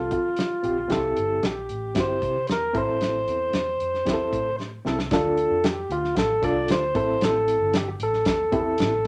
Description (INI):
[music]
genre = uptempo 1960s-style soul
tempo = 114 BPM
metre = 4/4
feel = straight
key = D minor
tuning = A4 = 440 Hz
[part]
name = tonewheel organ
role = melody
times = 0.0-9.1 s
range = F4 to D5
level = -26 LUFS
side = equal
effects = stopped rotary speaker
[part]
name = reed electric piano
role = accompaniment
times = 0.0-9.0 s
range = C4 to A4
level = -29 LUFS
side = equal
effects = overdrive, fast tremolo
[part]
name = vintage muted fingered electric bass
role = bass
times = 0.0-9.1 s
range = G1 to F3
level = -36 LUFS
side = equal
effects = none
[part]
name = warm soul drum kit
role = drums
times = 0.1-9.1 s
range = hi-hat, kick drum, snare drum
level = -30 LUFS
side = equal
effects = none
[sound]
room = moderate small room reverb, RT60 0.6 s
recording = none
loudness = -24 LUFS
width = mono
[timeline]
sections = 0.0-5.1 A section; 5.1-9.1 B section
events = drum fill 4.6-5.1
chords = 0.0 F; 0.9 C; 2.7 Am; 5.1 Dm; 6.9 Am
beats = 0.37 | 0.90 1.43 1.95 2.48 | 3.00 3.53 4.06 4.58 | 5.11 5.63 6.16 6.68 | 7.21 7.74 8.26 8.79